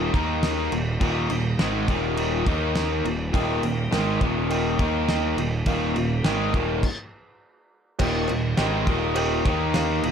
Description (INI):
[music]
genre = classic rock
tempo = 103 BPM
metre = 4/4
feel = straight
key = Eb major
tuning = A4 = 441 Hz
[part]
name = bright tonewheel organ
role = sustained chords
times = 0.0-10.1 s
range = G3 to Bb4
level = -36 LUFS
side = equal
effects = none
[part]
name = distorted electric guitar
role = riff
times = 0.0-10.1 s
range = Eb2 to Eb4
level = -28 LUFS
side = right 12 dB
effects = distortion
[part]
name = raw garage guitar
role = riff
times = 0.0-10.1 s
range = Eb2 to Eb4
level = -27 LUFS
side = left 12 dB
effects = overdrive
[part]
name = fuzz picked electric bass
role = bass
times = 0.0-10.1 s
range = Eb1 to Eb2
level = -28 LUFS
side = equal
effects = overdrive
[part]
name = cloth-damped thuddy drum kit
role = drums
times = 0.1-10.1 s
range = crash cymbal, kick drum, snare drum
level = -27 LUFS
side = equal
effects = none
[part]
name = warm upright piano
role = accompaniment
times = 3.3-10.1 s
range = G4 to G5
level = -31 LUFS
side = right 6 dB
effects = plate reverb
[part]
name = cowbell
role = percussion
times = 8.0-9.9 s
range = none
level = -36 LUFS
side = left 8 dB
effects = none
[sound]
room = light reverb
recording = none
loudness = -21 LUFS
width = side -7 dB against mid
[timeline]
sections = 0.0-8.0 A section; 8.0-10.1 A section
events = stop 6.8-8.0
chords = 0.0 Eb; 6.8 N.C.; 8.0 Eb